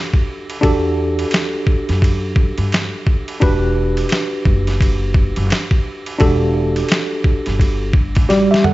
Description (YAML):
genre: hip hop, jazz-hop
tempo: 86 BPM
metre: 4/4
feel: swing 60% on 16ths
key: E minor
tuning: A4 = 441 Hz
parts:
  - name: mellow tine electric piano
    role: accompaniment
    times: 0.0-8.7 s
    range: G3 to F#5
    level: -19 LUFS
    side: right 1 dB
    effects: medium stereo tremolo
  - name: boom bap sampler-style drum kit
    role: drums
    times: 0.1-8.7 s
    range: hi-hat, kick drum, ride cymbal, snare drum, toms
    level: -17 LUFS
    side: equal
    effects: none
  - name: upright bass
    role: bass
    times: 0.6-8.5 s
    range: E1 to G2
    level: -20 LUFS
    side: equal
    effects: none
room: little or no reverb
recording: nothing above 7.8 kHz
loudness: -14 LUFS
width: side -17 dB against mid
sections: 0.0-8.7 A section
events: drum fill 8.3-8.7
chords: 0.0 Em11